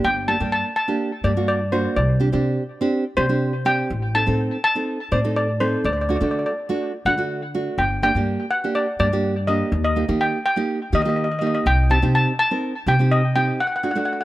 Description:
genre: calypso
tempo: 124 BPM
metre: 4/4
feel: straight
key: G harmonic minor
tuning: A4 = 437 Hz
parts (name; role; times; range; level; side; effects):
- steel pan; melody; 0.0-14.2 s; C5 to A5; -22 LUFS; left 1 dB; tape echo
- nylon-string guitar; accompaniment; 0.0-14.2 s; A3 to C5; -24 LUFS; right 2 dB; none
- upright bass; bass; 0.0-13.5 s; G1 to Eb3; -22 LUFS; equal; none
room: little or no reverb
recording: close, detailed microphones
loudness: -18 LUFS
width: side -16 dB against mid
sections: 0.0-14.2 A section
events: break 13.6-14.2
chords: 0.0 Gmadd9; 2.0 Csus2; 3.9 Adim; 5.8 D; 7.8 Gm; 9.7 Eb; 11.7 Cm; 13.6 D

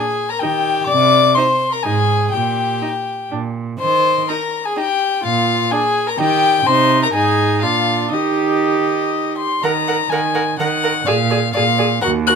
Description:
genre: quick classical-period movement for string quartet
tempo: 125 BPM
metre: 3/4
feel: straight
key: Eb major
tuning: A4 = 440 Hz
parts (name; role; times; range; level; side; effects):
- warm violin; melody; 0.0-12.3 s; Eb5 to Gb6; -17 LUFS; left 5 dB; none
- warm violin; second line; 0.0-12.4 s; Eb4 to Gb5; -21 LUFS; left 1 dB; none
- rich viola; accompaniment; 0.4-12.4 s; D4 to Bb4; -21 LUFS; right 5 dB; none
- rich cello; bass; 0.4-12.4 s; Eb2 to Eb3; -22 LUFS; right 7 dB; none
room: light reverb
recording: minimal, uncompressed stereo recording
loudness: -14 LUFS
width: side -6 dB against mid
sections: 0.0-9.6 A section; 9.6-12.4 B section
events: none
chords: 0.4 Eb; 0.9 N.C.; 1.8 Ab5; 2.3 Eb/Bb (rootless); 3.3 Bb; 3.8 Eb; 5.2 Bb5; 6.2 Eb; 6.7 Cm; 7.1 Ab5; 7.6 Bb; 8.1 Eb; 9.6 Ebm; 11.1 Bb7

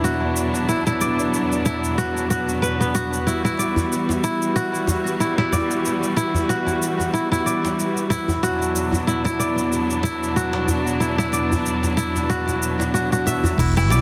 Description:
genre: organic downtempo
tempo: 93 BPM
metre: 4/4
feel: swing 56% on 16ths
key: unclear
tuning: A4 = 440 Hz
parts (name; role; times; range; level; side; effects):
- rich studio string section; sustained chords; 0.0-14.0 s; E2 to F#4; -26 LUFS; equal; sidechain pumping
- kora; arpeggios; 0.0-14.0 s; B3 to E5; -24 LUFS; equal; low-pass filter, digital delay
- organic electronic drum kit; drums; 0.0-14.0 s; cabasa, crash cymbal, hi-hat, woodblock; -34 LUFS; equal; overdrive
- djembe; percussion; 3.6-14.0 s; none; -29 LUFS; equal; none
- fretless electric bass; bass; 13.6-14.0 s; E1 to B1; -19 LUFS; equal; lush chorus
- electronic kick drum; drums; 13.6-13.7 s; none; -30 LUFS; equal; overdrive
room: moderate huge ambient reverb, RT60 4.6 s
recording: dense, heavily limited modern master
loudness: -21 LUFS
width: mono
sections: 0.0-13.6 A section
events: none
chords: 0.0 Bm/E; 3.3 Em7; 8.4 Bm/E

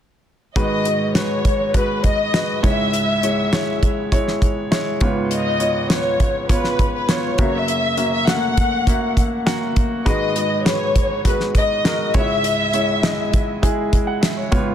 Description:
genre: piano-driven pop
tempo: 101 BPM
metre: 4/4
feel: straight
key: unclear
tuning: A4 = 439 Hz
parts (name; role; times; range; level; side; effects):
- dark studio violin section; melody; 0.6-13.4 s; B4 to F#5; -21 LUFS; left 2 dB; none
- clear upright piano; accompaniment; 0.6-14.7 s; C#2 to F#5; -21 LUFS; equal; none
- damped 70s drum kit; drums; 0.6-14.7 s; hi-hat, kick drum, snare drum; -19 LUFS; equal; none
room: light reverb, small room ambience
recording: dense, heavily limited modern master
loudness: -16 LUFS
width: side -9 dB against mid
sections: 0.6-14.7 A section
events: none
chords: 0.6 G#m7; 2.6 C#m; 5.0 C#7; 7.4 F#7; 10.1 G#m7; 12.1 C#m

